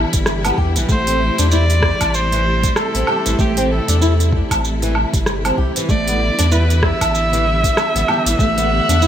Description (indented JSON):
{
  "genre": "organic downtempo",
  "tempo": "96 BPM",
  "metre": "4/4",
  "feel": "swing 59% on 16ths",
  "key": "A minor",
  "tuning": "A4 = 440 Hz",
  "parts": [
    { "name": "warm symphonic string section", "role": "sustained chords", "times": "0.0-9.1 s", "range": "C3 to F#5", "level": "-23 LUFS", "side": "equal", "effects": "sidechain pumping" },
    { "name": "warm sub bass", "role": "bass", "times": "0.0-9.1 s", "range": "G1 to E2", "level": "-18 LUFS", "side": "equal", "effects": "sidechain pumping" },
    { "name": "electronic kick drum", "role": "drums", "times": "0.1-8.5 s", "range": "none", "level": "-20 LUFS", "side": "equal", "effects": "none" },
    { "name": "organic electronic drum kit", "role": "drums", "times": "0.1-9.1 s", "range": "hi-hat, rim click, shaker, woodblock", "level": "-21 LUFS", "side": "right 1 dB", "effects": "none" },
    { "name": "flamenco guitar", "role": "arpeggios", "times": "0.5-9.1 s", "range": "E3 to G4", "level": "-22 LUFS", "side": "right 1 dB", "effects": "wide subtle chorus, digital delay" },
    { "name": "warm kamancheh", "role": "melody", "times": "0.9-9.1 s", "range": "G4 to E5", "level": "-20 LUFS", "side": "equal", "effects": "digital delay" }
  ],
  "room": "light reverb",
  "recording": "bright 1980s-style digital production",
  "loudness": "-14 LUFS",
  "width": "side -10 dB against mid",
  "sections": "0.0-9.1 A section",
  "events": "none",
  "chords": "0.0 G6; 0.9 Am7; 5.9 G6/A"
}